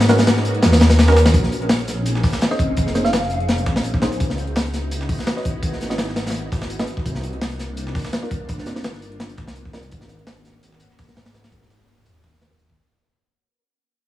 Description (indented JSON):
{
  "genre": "drum and bass, jungle",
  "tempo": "168 BPM",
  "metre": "4/4",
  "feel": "straight",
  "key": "unclear",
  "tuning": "A4 = 444 Hz",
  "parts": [
    { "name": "soft string machine", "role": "sustained chords", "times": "0.0-12.7 s", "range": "Bb3 to Ab4", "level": "-29 LUFS", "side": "left 1 dB", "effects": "phaser, ensemble chorus" },
    { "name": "dark detuned saw bass", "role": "bass", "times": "0.0-12.8 s", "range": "F1 to Ab2", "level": "-21 LUFS", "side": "equal", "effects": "none" },
    { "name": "crunchy breakbeat drum kit", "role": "drums", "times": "0.0-12.8 s", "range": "hi-hat, kick drum, snare drum", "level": "-20 LUFS", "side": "equal", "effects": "none" },
    { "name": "filtered dub chord stab", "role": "stabs", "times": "0.1-12.6 s", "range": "Ab3 to Eb5", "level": "-24 LUFS", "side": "right 1 dB", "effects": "chorus, dub echo" },
    { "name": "breakbeat sampler-style drum kit", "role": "drums", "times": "0.1-12.8 s", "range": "hi-hat, snare drum", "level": "-33 LUFS", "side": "right 2 dB", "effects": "high-pass filter on hats, high-pass filter on snare, high-pass filter on room" },
    { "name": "thumb-piano-like synth pluck", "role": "melody", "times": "2.5-3.3 s", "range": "Eb5 to F5", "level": "-26 LUFS", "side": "right 1 dB", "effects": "chorus, dub echo" }
  ],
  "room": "light reverb, small room ambience",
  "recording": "vinyl crackle",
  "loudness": "-17 LUFS",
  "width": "side -14 dB against mid",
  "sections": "0.0-1.3 A section; 1.3-12.8 B section",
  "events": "drop 0.0-1.3; fade-out 1.3-12.8; filter sweep on synth stab 1.3-12.8",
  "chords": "0.0 Abm11; 1.3 Bbm11; 4.2 Dbm11; 7.1 Cm11; 9.9 Abm11"
}